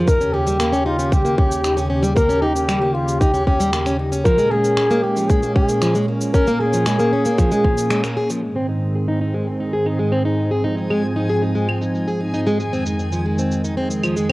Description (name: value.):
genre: folktronica.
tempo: 115 BPM.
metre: 4/4.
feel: straight.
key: Ab major.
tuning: A4 = 439 Hz.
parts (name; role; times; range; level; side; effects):
warm analog pad; sustained chords; 0.0-14.3 s; Eb2 to G4; -21 LUFS; equal; chorus, cassette tape.
picked plugged-in steel-string acoustic guitar; arpeggios; 0.0-14.3 s; F3 to Ab4; -22 LUFS; equal; low-pass filter, cassette tape.
mellow flugelhorn; melody; 0.1-8.1 s; F4 to Bb4; -20 LUFS; equal; tape echo.
electronic kick drum; drums; 0.1-7.7 s; none; -17 LUFS; equal; cassette tape.
electronic shaker, finger snaps and claves; drums; 0.1-14.3 s; none; -28 LUFS; equal; low-pass filter on perc, cassette tape, low-pass filter on snare, low-pass filter on room.
backwards swelling texture; texture; 8.9-14.3 s; Ab4 to Ab5; -31 LUFS; equal; built-in reverb, cassette tape.
room: light reverb.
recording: home recording on cassette.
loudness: -16 LUFS.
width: side -20 dB against mid.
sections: 0.0-8.4 A section; 8.4-14.3 B section.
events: break 7.9-8.4; band accent 7.9; filter sweep on drum 8.4-14.3; filter sweep on steel-string acoustic guitar 8.4-14.3.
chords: 0.1 Eb7; 4.3 Bbm7; 8.4 Ab; 12.6 Fm7.